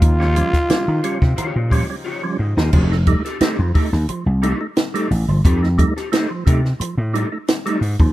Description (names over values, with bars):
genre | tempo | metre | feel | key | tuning
funk | 88 BPM | 4/4 | straight | F mixolydian | A4 = 439 Hz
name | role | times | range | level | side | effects
growling trombone | melody | 0.0-2.0 s | F4 | -22 LUFS | equal | tape echo
electric guitar at the edge of break-up | accompaniment | 0.0-8.0 s | Eb4 to Eb5 | -28 LUFS | left 4 dB | ensemble chorus
overdriven tonewheel organ | sustained chords | 0.0-2.7 s | Db3 to G4 | -34 LUFS | equal | none
percussive tonewheel organ | stabs | 0.0-8.1 s | Eb3 to Eb4 | -24 LUFS | right 3 dB | chorus vibrato, fast rotary speaker
vintage slap bass | bass | 0.0-8.1 s | F1 to Eb3 | -17 LUFS | equal | none
compact cocktail drum kit | drums | 0.0-8.1 s | crash cymbal, hi-hat, kick drum, snare drum | -18 LUFS | equal | none
room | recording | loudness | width
small room ambience | rough home demo mix | -16 LUFS | side -15 dB against mid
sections
0.0-2.7 A section; 2.7-8.1 B section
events
drum fill 2.1-2.7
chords
0.0 Eb9; 2.7 F9